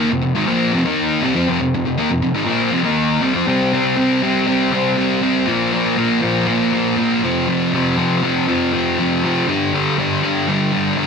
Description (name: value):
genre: rock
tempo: 120 BPM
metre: 4/4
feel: straight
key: unclear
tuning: A4 = 437 Hz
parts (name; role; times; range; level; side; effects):
- sludgy distorted guitar; solo; 0.0-11.1 s; F2 to Eb4; -15 LUFS; equal; overdrive
room: moderate studio reverb, RT60 0.8 s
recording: none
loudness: -15 LUFS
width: side -5 dB against mid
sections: 0.0-3.5 A section; 3.5-11.1 B section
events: none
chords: 0.0 F5; 3.5 C5; 5.5 Bb5; 7.2 F5; 9.5 G5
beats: 0.48 0.99 | 1.49 1.99 2.49 2.99 | 3.49 3.98 4.49 4.98 | 5.48 5.98 6.48 6.98 | 7.48 7.98 8.48 8.97 | 9.47 9.97 10.47 10.97